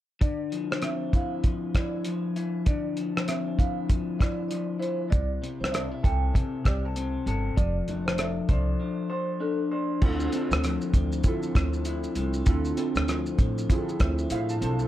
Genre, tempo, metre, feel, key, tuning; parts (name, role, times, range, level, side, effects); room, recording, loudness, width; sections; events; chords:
indie pop, bedroom pop; 98 BPM; 4/4; swing 60% on 16ths; A4 = 444 Hz
vibraphone with soft mallets; second line; 0.2-9.9 s; A4 to G5; -35 LUFS; right 3 dB; wide subtle chorus, analog delay, plate reverb
electric guitar through a small old amp; accompaniment; 0.2-14.9 s; C3 to C5; -30 LUFS; left 3 dB; lush chorus, warbly pitch drift
cloth-damped thuddy drum kit; drums; 0.2-14.9 s; crash cymbal, hi-hat, kick drum, rim click, shaker; -25 LUFS; equal
upright bass; bass; 5.1-14.9 s; F1 to D3; -29 LUFS; equal
warbly lo-fi synth keys; accompaniment; 10.0-14.9 s; C4 to A5; -32 LUFS; right 4 dB; chorus, plate reverb
light reverb; dark, warm production; -24 LUFS; side -13 dB against mid
0.2-10.0 A section; 10.0-14.9 B section
break 8.8-10.0; synth keys fill 13.7-14.9
0.2 Dm9; 5.1 C6; 7.6 F6; 10.0 Dm9